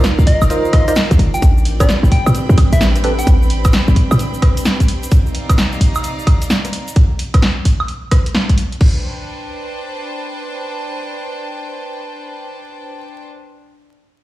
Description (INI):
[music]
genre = UK garage, two-step garage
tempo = 130 BPM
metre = 4/4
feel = swing 64% on 16ths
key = unclear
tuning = A4 = 441 Hz
[part]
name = ethereal airy pad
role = sustained chords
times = 0.1-5.1 s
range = C4 to B4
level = -28 LUFS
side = right 2 dB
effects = ensemble chorus, built-in reverb, sidechain pumping
[part]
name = percussive organ stab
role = stabs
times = 0.0-3.1 s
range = C4 to Eb5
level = -20 LUFS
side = right 1 dB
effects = lush chorus, cassette tape, ping-pong delay
[part]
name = short 808-style bass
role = bass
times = 0.0-4.2 s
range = G1 to A2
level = -13 LUFS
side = equal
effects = sidechain pumping
[part]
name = punchy analog drum machine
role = drums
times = 0.0-8.9 s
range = crash cymbal, hi-hat, rim click, snare drum, woodblock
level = -20 LUFS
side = right 1 dB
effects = none
[part]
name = egg shaker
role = percussion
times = 0.0-6.9 s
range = none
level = -33 LUFS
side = left 1 dB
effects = none
[part]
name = rich chamber string section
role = texture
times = 0.0-13.3 s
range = C3 to B5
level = -26 LUFS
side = equal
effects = sidechain pumping
[part]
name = soft struck synth lead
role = melody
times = 0.3-3.3 s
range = D5 to G5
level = -22 LUFS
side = left 1 dB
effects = chorus, ping-pong delay
[part]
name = electronic kick drum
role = drums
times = 0.3-8.9 s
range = none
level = -12 LUFS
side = equal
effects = none
[sound]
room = light reverb, digital ambience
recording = played on a big sound system in a bare room, large studio reverb, vinyl crackle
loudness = -12 LUFS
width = side -16 dB against mid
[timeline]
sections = 0.0-8.8 A section; 8.8-12.5 B section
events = drop 0.0-8.8; band accent 8.3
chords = 0.0 Cm11; 1.4 Am11; 5.1 Cm11; 8.8 Am11